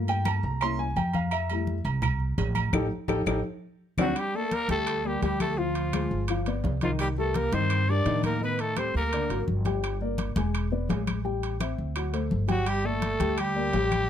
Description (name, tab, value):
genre	Afro-Cuban jazz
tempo	169 BPM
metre	4/4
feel	straight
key	G minor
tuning	A4 = 441 Hz
part	dark baby grand piano	accompaniment	0.0-14.0 s	Bb2 to C6	-31 LUFS	left 4 dB	none
part	upright bass	bass	0.0-14.1 s	E1 to A2	-29 LUFS	right 1 dB	none
part	agogo bells and timbales	percussion	0.1-14.1 s	none	-36 LUFS	right 9 dB	none
part	congas	percussion	0.1-14.1 s	none	-33 LUFS	left 3 dB	none
part	claves	percussion	0.3-14.1 s	none	-38 LUFS	left 9 dB	none
part	growling trumpet	melody	4.0-9.5, 12.5-14.1 s	F4 to D5	-29 LUFS	left 2 dB	none
part	warm tenor saxophone	second line	4.0-9.5, 12.5-14.1 s	F3 to D4	-34 LUFS	right 6 dB	none
room	little or no reverb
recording	close, detailed microphones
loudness	-25 LUFS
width	side -9 dB against mid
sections	0.0-4.2 A section; 4.2-14.1 B section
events	grand piano solo 0.0-4.2; band accent 2.7-4.2; drum fill 3.6-4.2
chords	0.0 Gm9; 0.6 C7b9; 1.3 Fmaj9; 2.7 Gsus2/A; 3.5 D7; 4.2 Gmadd9; 5.6 Dm7b5; 6.3 G7; 7.0 Cm9; 8.4 Cm13; 9.1 Daug; 9.8 Gm; 10.5 E7; 11.3 Am7; 12.0 D7; 12.7 Gmadd9